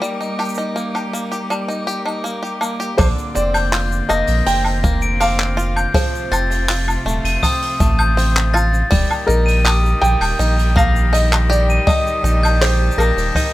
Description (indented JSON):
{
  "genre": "folktronica",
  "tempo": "81 BPM",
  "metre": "4/4",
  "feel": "straight",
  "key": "Eb lydian",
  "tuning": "A4 = 440 Hz",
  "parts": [
    { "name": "rich string quartet", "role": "sustained chords", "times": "0.0-13.5 s", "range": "C3 to A5", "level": "-27 LUFS", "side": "right 1 dB", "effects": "none" },
    { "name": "bluegrass banjo", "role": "arpeggios", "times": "0.0-13.5 s", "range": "D3 to G4", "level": "-24 LUFS", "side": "left 1 dB", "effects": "tape echo, plate reverb" },
    { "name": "jazz brush drum kit", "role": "drums", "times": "0.0-13.5 s", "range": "handclaps, hi-hat, shaker, woodblock", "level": "-23 LUFS", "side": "equal", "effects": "none" },
    { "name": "flickering grainy texture", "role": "texture", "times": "0.0-3.0 s", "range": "D6", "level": "-32 LUFS", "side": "right 2 dB", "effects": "built-in reverb, plate reverb" },
    { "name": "felt-muted upright piano", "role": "melody", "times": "3.0-13.5 s", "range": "Bb4 to G5", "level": "-21 LUFS", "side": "equal", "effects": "tape echo, plate reverb" },
    { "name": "glockenspiel with brass mallets", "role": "second line", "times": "3.0-13.1 s", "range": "D6 to Eb7", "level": "-22 LUFS", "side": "left 2 dB", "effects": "tape echo" },
    { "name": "warm sub bass", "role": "bass", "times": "3.0-13.3 s", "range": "Eb1 to Bb1", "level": "-17 LUFS", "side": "equal", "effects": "none" },
    { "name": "kick drum", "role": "drums", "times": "3.0-13.5 s", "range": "none", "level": "-18 LUFS", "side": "equal", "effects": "none" }
  ],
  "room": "light reverb",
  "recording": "none",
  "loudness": "-14 LUFS",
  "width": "side -16 dB against mid",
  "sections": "0.0-3.0 A section; 3.0-13.5 B section",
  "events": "none",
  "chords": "0.0 Eb; 3.0 Bbadd9; 6.0 F; 8.9 Eb",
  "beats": "| 0.03 0.77 1.51 2.25 | 2.99 3.73 4.47 5.21 | 5.95 6.69 7.43 8.18 | 8.92 9.66 10.40 11.14 | 11.88 12.62 13.36"
}